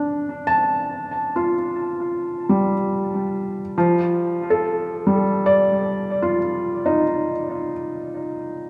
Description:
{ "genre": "ambient", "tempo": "free time", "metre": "none", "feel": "none", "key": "unclear", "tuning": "A4 = 437 Hz", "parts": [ { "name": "felt-muted upright piano", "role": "solo", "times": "0.0-8.7 s", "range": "F3 to A5", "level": "-22 LUFS", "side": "equal", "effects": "analog delay" } ], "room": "wet spring reverb, RT60 2.4 s", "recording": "echo-heavy mix", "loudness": "-22 LUFS", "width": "mono", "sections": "0.0-3.7 A section; 3.7-8.7 B section", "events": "none", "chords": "0.0 Dm; 3.7 F13", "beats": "free time" }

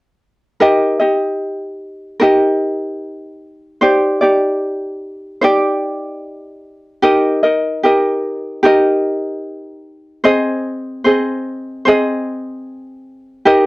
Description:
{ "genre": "pop", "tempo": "75 BPM", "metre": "4/4", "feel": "straight", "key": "Eb major", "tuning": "A4 = 440 Hz", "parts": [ { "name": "ukulele", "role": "accompaniment", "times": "0.6-13.7 s", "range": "C4 to Eb5", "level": "-13 LUFS", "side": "equal", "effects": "none" } ], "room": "moderate studio reverb, RT60 0.6 s", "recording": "worn, warbling old tape, cassette tape, warbly pitch drift", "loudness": "-13 LUFS", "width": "side -20 dB against mid", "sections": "0.6-13.5 A section", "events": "none", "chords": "0.6 Eb; 3.8 Cmadd9/Eb; 7.0 Eb; 10.2 Ab", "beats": "| 0.60 1.40 2.21 3.01 | 3.81 4.62 5.42 6.23 | 7.03 7.83 8.64 9.44 | 10.25 11.05 11.85 12.65 | 13.46" }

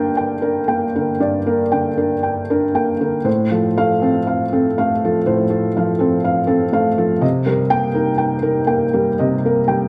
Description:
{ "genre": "neoclassical minimalist piano", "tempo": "60 BPM", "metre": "4/4", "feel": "rubato", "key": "unclear", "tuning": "A4 = 440 Hz", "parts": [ { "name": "felt-muted upright piano", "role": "solo", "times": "0.0-9.9 s", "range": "G2 to G5", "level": "-18 LUFS", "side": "equal", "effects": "none" } ], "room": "moderate concert hall reverb, RT60 2.2 s", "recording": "dark, warm production", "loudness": "-18 LUFS", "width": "mono", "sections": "0.0-9.9 A section", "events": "none", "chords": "0.0 Gm; 3.3 F/A; 7.2 Cm7", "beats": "0.20 1.22 2.25 | 3.26 4.27 5.27 6.25 | 7.23 8.21 9.20" }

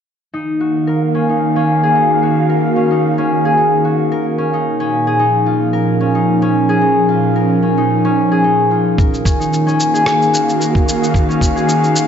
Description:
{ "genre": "organic downtempo", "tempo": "111 BPM", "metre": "4/4", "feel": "swing 55% on 16ths", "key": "Eb minor", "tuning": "A4 = 440 Hz", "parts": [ { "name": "airy breathy pad", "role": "sustained chords", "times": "0.5-12.1 s", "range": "Bb2 to F5", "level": "-16 LUFS", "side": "right 2 dB", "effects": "chorus, sidechain pumping" }, { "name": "concert harp", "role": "arpeggios", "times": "0.3-12.1 s", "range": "Db4 to Bb4", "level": "-15 LUFS", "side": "left 2 dB", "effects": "low-pass filter, tape echo" }, { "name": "electronic kick drum", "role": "drums", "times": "9.0-11.5 s", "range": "none", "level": "-14 LUFS", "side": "equal", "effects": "none" }, { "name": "electronic shaker and rim click", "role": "drums", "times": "9.0-12.1 s", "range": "none", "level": "-23 LUFS", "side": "equal", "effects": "low-pass filter on perc, low-pass filter on snare" } ], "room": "moderate recital hall reverb, RT60 1.6 s, digital ambience", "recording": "nothing above 7.9 kHz", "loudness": "-12 LUFS", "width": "side -8 dB against mid", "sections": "0.3-12.1 A section", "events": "none", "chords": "0.3 Ebm7; 4.7 Bbm7; 9.0 Ebm7", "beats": "| 0.33 0.87 1.41 1.96 | 2.50 3.04 3.58 4.12 | 4.66 5.20 5.74 6.28 | 6.82 7.36 7.90 8.44 | 8.98 9.52 10.06 10.60 | 11.14 11.68" }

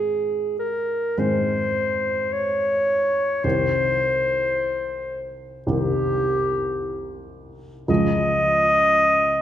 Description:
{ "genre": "classical, romantic duo for clarinet and grand piano", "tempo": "50-56 BPM", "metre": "4/4", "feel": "rubato", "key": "unclear", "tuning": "A4 = 441 Hz", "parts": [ { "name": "warm clarinet", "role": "melody", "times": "0.0-9.4 s", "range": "G4 to Eb5", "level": "-20 LUFS", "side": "equal", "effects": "none" }, { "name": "dark baby grand piano", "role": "accompaniment", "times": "0.0-9.4 s", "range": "C2 to Ab4", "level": "-26 LUFS", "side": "right 1 dB", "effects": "none" } ], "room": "wet concert hall reverb, RT60 1.8 s", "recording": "minimal, uncompressed stereo recording", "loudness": "-19 LUFS", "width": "side -11 dB against mid", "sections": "0.0-9.4 A section", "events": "none", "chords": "0.0 Ab; 3.4 Cm; 7.9 Db", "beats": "1.18 2.32 | 3.44 4.57 5.67 6.79 | 7.89 8.97" }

